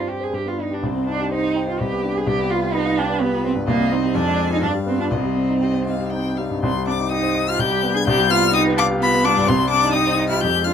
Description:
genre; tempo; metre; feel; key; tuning
quick classical-period movement for piano trio; 117-130 BPM; 3/4; rubato; C minor; A4 = 440 Hz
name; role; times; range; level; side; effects
rich violin; melody; 0.0-10.7 s; B4 to Ab6; -23 LUFS; left 6 dB; none
warm cello; second line; 0.0-10.7 s; Bb3 to Ab4; -22 LUFS; right 5 dB; none
warm concert grand piano; accompaniment; 0.0-10.7 s; C2 to G5; -21 LUFS; left 2 dB; none
room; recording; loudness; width
light reverb; close, detailed microphones; -17 LUFS; side -8 dB against mid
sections
0.0-6.6 A section; 6.6-10.7 A section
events
none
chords
0.3 G; 0.8 Cm; 1.8 G/C; 2.3 G7/C; 3.7 Cm; 4.1 Ddim/F; 4.6 G7; 5.1 Cm; 7.6 G/C; 8.1 G7/C; 9.5 Cm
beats
0.33 | 0.83 1.32 1.80 | 2.28 2.75 3.22 | 3.69 4.15 4.62 | 5.12 5.62 6.13 | 6.63 7.12 7.60 | 8.07 8.54 9.01 | 9.47 9.94 10.41

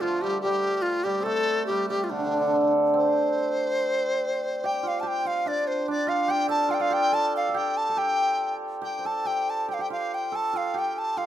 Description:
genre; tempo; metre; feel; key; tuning
chinese traditional, Chinese chamber ensemble; 71 BPM; 2/4; rubato; unclear; A4 = 440 Hz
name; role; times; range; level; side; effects
bright large dizi; melody; 0.0-11.3 s; D4 to A5; -25 LUFS; left 1 dB; none
hammered dulcimer; second line; 0.0-11.3 s; D3 to C5; -27 LUFS; right 2 dB; none
room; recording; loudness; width
light reverb; close, detailed microphones; -23 LUFS; side -11 dB against mid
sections
0.0-2.9 A section; 2.9-11.3 B section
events
none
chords
none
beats
0.41 | 1.24 2.09 | 2.94 3.79 | 4.63 5.45 | 6.28 7.12 | 7.96 8.82 | 9.68 10.53

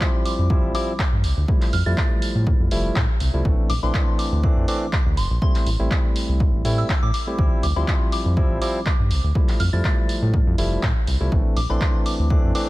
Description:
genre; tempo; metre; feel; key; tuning
deep house; 122 BPM; 4/4; swing 54% on 16ths; D minor; A4 = 443 Hz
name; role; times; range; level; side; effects
soft synth bell; melody; 0.0-12.7 s; C6 to A6; -31 LUFS; left 1 dB; chorus, phaser, ping-pong delay
barky tine electric piano; stabs; 0.0-12.7 s; E3 to E4; -27 LUFS; equal; sidechain pumping, tape echo
electronic kick drum; drums; 0.0-12.4 s; none; -21 LUFS; equal; none
punchy analog drum machine; drums; 0.0-12.7 s; handclaps, hi-hat; -30 LUFS; equal; none
round analog bass; bass; 0.4-12.5 s; F1 to A2; -21 LUFS; equal; tube saturation, sidechain pumping
riser; sound effects; 11.3-12.7 s; none; barely audible; none; none
room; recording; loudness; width
little or no reverb; none; -18 LUFS; side -18 dB against mid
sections
0.0-12.7 A section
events
none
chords
0.0 Dm11; 1.5 Fmaj9; 3.5 Bbmaj9#11; 5.4 Am7; 7.4 Dm11; 9.4 Fmaj9; 11.3 Bbmaj9#11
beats
0.01 0.50 0.99 | 1.49 1.98 2.47 2.96 | 3.45 3.94 4.43 4.93 | 5.42 5.91 6.40 6.89 | 7.39 7.88 8.37 8.86 | 9.35 9.85 10.34 10.83 | 11.32 11.81 12.30

